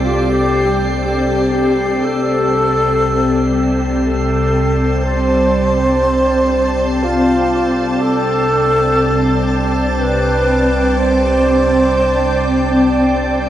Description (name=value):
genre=ambient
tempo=60 BPM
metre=3/4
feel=straight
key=unclear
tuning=A4 = 440 Hz
part: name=breathy wooden-headed alto flute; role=melody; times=0.0-13.0 s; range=F4 to C5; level=-17 LUFS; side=equal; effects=cassette tape, shimmer reverb, tape echo
part: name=soft additive organ-like pad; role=sustained chords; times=0.0-13.5 s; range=C4 to A5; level=-16 LUFS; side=equal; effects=ensemble chorus, built-in reverb, cassette tape, shimmer reverb
part: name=warm sub bass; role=bass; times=0.0-13.5 s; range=C2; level=-22 LUFS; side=equal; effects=none
part: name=bowed-like drone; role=drone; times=0.0-13.5 s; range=C3 to G3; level=-23 LUFS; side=equal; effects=built-in reverb, phaser, cassette tape
part: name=drifting glass-harmonics texture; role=texture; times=0.0-13.5 s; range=C7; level=-34 LUFS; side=equal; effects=chorus, built-in reverb, cassette tape, shimmer reverb
room=wet small room reverb, RT60 0.5 s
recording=home recording on cassette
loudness=-12 LUFS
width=side -12 dB against mid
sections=0.0-13.5 A section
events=fade-out on synth texture 0.0-13.5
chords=0.0 Csus2